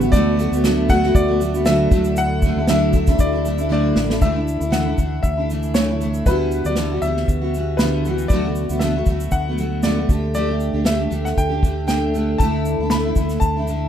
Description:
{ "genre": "acoustic pop", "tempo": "117 BPM", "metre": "4/4", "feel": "swing 55% on 16ths", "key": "D major", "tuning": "A4 = 442 Hz", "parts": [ { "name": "picked steel-string acoustic guitar", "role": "accompaniment", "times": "0.0-13.9 s", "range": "D3 to G4", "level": "-20 LUFS", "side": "right 1 dB", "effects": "double-tracked left and right" }, { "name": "ethereal airy pad", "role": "sustained chords", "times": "0.0-4.2 s", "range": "D3 to E5", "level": "-30 LUFS", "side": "left 1 dB", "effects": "ensemble chorus, built-in reverb" }, { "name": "fingered electric bass", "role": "bass", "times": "0.0-13.9 s", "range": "A1 to D2", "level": "-23 LUFS", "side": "equal", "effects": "none" }, { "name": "unplugged drum kit", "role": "drums", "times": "0.0-13.8 s", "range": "kick drum, shaker, snare drum", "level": "-20 LUFS", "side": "equal", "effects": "none" }, { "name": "bright upright piano", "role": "melody", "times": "0.1-13.9 s", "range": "B4 to B5", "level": "-25 LUFS", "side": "left 3 dB", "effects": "none" } ], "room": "light reverb, small room ambience", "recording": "rough home demo mix", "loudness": "-16 LUFS", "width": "side -9 dB against mid", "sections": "0.0-4.2 A section; 4.2-13.9 B section", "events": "drum fill 3.7-4.2", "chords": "0.1 Bm7/D; 1.9 Dadd9; 4.2 Dsus2; 6.3 Emadd9/D; 8.3 Bm7/D; 10.1 Gsus2/D; 12.4 Dsus2" }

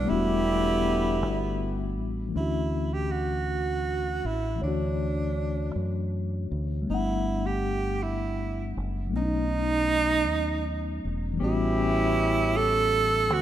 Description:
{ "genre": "slow six-eight R&B", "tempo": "53 BPM (dotted quarters)", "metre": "6/8", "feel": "straight", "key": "unclear", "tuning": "A4 = 439 Hz", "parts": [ { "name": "breathy tenor saxophone", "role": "melody", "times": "0.0-13.4 s", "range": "D4 to A4", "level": "-28 LUFS", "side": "right 4 dB", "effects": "slapback echo" }, { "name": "mellow tine electric piano", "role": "accompaniment", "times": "0.0-13.4 s", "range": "E3 to F#5", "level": "-30 LUFS", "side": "left 4 dB", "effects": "medium stereo tremolo" }, { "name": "deep dub fingered electric bass", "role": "bass", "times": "0.0-13.4 s", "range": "E1 to F#2", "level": "-30 LUFS", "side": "equal", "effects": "none" }, { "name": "warm horn section", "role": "stabs", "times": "0.1-1.9, 11.4-13.3 s", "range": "D3 to G4", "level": "-31 LUFS", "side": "left 3 dB", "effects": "slapback echo" } ], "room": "light reverb, small room ambience", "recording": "rough home demo mix", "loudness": "-24 LUFS", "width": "side -11 dB against mid", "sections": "0.0-2.3 A section; 2.3-11.4 B section; 11.4-13.4 A section", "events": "none", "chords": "0.1 Em11; 2.3 Dmaj9; 6.9 Gmaj9; 9.1 B9; 11.4 A13" }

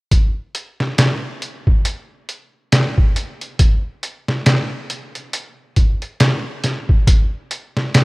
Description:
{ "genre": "trip hop", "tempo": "69 BPM", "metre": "4/4", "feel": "swing 58% on 16ths", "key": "none", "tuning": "none", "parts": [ { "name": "trip hop sampler-style drum kit", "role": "drums", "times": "0.1-8.0 s", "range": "hi-hat, kick drum, snare drum", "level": "-14 LUFS", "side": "equal", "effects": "studio reverb" } ], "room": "little or no reverb", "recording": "rough home demo mix", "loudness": "-16 LUFS", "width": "side -26 dB against mid", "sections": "0.1-8.0 A section", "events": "none", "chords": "none" }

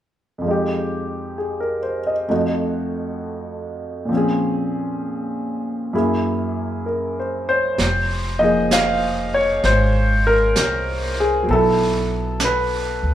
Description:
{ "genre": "jazz ballad", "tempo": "65 BPM", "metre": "4/4", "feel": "swing 67% on 8ths", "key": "unclear", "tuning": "A4 = 441 Hz", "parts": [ { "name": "warm concert grand piano", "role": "accompaniment", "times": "0.4-13.1 s", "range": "F2 to F5", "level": "-19 LUFS", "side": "equal", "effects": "none" }, { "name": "upright bass", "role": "bass", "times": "7.8-13.1 s", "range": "F1 to D2", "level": "-22 LUFS", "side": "equal", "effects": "none" }, { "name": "jazz brush drum kit", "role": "drums", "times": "7.8-13.1 s", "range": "brushed snare drum, hi-hat, snare drum", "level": "-25 LUFS", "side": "right 2 dB", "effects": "none" } ], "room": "moderate large studio reverb, RT60 1.2 s", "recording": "band playing live in one room", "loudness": "-18 LUFS", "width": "side -11 dB against mid", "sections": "0.4-7.8 A section; 7.8-13.1 B section", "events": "none", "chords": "0.4 Fm9; 2.3 F7b9; 4.1 Bbm9; 5.9 Gb9; 7.8 Fm7; 11.5 B7(no3)" }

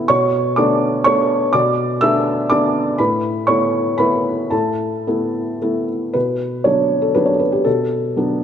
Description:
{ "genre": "neoclassical minimalist piano", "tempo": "109-126 BPM", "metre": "3/4", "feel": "rubato", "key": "B minor", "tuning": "A4 = 443 Hz", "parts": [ { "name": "felt-muted upright piano", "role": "solo", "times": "0.0-8.4 s", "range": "A2 to E6", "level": "-15 LUFS", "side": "equal", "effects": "none" } ], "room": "moderate scoring stage reverb, RT60 1.8 s", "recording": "none", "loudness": "-15 LUFS", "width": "side -8 dB against mid", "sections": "0.0-6.1 A section; 6.1-8.4 B section", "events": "none", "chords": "0.1 Bm7; 3.0 Asus2; 6.1 Bm7" }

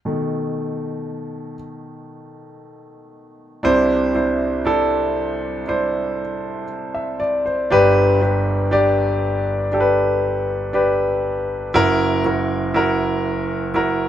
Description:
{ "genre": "pop", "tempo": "59 BPM", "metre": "4/4", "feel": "straight", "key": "unclear", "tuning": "A4 = 440 Hz", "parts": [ { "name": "clear concert grand piano", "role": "solo", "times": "0.1-14.1 s", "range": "F#1 to E5", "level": "-17 LUFS", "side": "equal", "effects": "none" } ], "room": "moderate studio ambience, RT60 0.5 s", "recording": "band playing live in one room", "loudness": "-17 LUFS", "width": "side -11 dB against mid", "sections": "0.0-3.6 A section; 3.6-14.1 B section", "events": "grand piano solo 0.0-3.6", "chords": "0.0 B7; 3.6 Cadd9; 7.7 G; 11.8 F#7" }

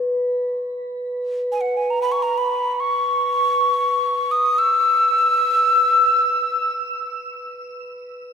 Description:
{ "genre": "world meditative, free-time meditation music", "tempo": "free time", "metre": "none", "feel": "none", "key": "unclear", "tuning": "A4 = 440 Hz", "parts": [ { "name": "quartz singing bowl", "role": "texture", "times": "0.0-8.1 s", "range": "B4", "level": "-26 LUFS", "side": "equal", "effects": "shimmer reverb" }, { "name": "breathy mellow alto recorder", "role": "melody", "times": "1.5-6.7 s", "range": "F#5 to E6", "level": "-17 LUFS", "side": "left 1 dB", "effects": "shimmer reverb, tape echo" } ], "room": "wet church reverb, RT60 3.4 s", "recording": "none", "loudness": "-17 LUFS", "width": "side -7 dB against mid", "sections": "0.0-8.3 A section", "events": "none", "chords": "none" }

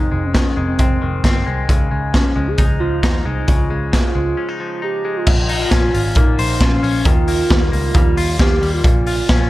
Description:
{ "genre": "jangly indie pop", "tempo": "134 BPM", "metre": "4/4", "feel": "straight", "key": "unclear", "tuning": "A4 = 440 Hz", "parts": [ { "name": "warbly nostalgic lead", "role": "melody", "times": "0.0-9.5 s", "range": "C4 to Ab4", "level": "-22 LUFS", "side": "right 1 dB", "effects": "chorus, tremolo, slapback echo" }, { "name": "direct-recorded clean electric guitar", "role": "arpeggios", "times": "0.0-9.5 s", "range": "F2 to C5", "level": "-24 LUFS", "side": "left 4 dB", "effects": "spring reverb, slapback echo" }, { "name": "vintage muted picked electric bass", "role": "bass", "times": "0.0-9.5 s", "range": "F1 to Eb2", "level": "-21 LUFS", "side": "equal", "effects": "none" }, { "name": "raw garage drum kit", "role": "drums", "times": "0.3-9.4 s", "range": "crash cymbal, hi-hat, kick drum, snare drum", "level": "-16 LUFS", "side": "equal", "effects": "none" } ], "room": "little or no reverb", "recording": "dark, warm production", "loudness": "-14 LUFS", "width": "side -16 dB against mid", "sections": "0.0-5.3 A section; 5.3-9.5 B section", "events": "break 4.4-5.3", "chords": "0.0 Fm7; 1.7 Dbadd9; 5.3 Bbmadd9; 7.1 Ebadd9; 8.8 Bbm" }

